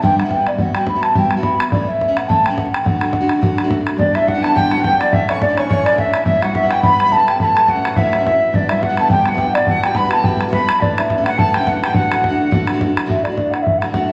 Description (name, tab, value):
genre	celtic folk, Celtic reel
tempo	211 BPM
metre	4/4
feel	swing 56% on 8ths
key	D major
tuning	A4 = 442 Hz
part	mellow hollow wooden flute	melody	0.0-14.1 s	C#5 to B5	-20 LUFS	equal	none
part	picked steel-string acoustic guitar	accompaniment	0.0-14.1 s	E2 to G4	-24 LUFS	equal	none
part	bodhran	percussion	0.0-14.0 s	none	-22 LUFS	equal	none
part	breathy bright low whistle	second line	4.0-12.8 s	D5 to C#6	-23 LUFS	equal	none
part	hammered dulcimer	second line	4.0-14.1 s	C#4 to B4	-26 LUFS	equal	none
room	wet large studio reverb, RT60 1.3 s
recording	vinyl crackle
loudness	-16 LUFS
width	mono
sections	0.0-4.0 A section; 4.0-13.1 A section; 13.1-14.1 B section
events	none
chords	0.0 G6; 0.6 Emadd9/G; 1.7 A; 2.9 D; 4.0 G; 5.1 A; 6.3 Em; 7.4 A; 8.5 G6; 9.7 Emadd9/G; 10.8 A; 11.9 D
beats	0.02 0.30 | 0.58 0.87 1.15 1.43 | 1.72 2.00 2.29 2.57 | 2.85 3.14 3.42 3.71 | 3.99 4.28 4.56 4.84 | 5.13 5.42 5.70 5.98 | 6.27 6.55 6.84 7.12 | 7.41 7.69 7.97 8.26 | 8.54 8.83 9.11 9.39 | 9.68 9.96 10.24 10.53 | 10.81 11.09 11.38 11.66 | 11.95 12.23 12.51 12.79 | 13.08 13.36 13.64 13.93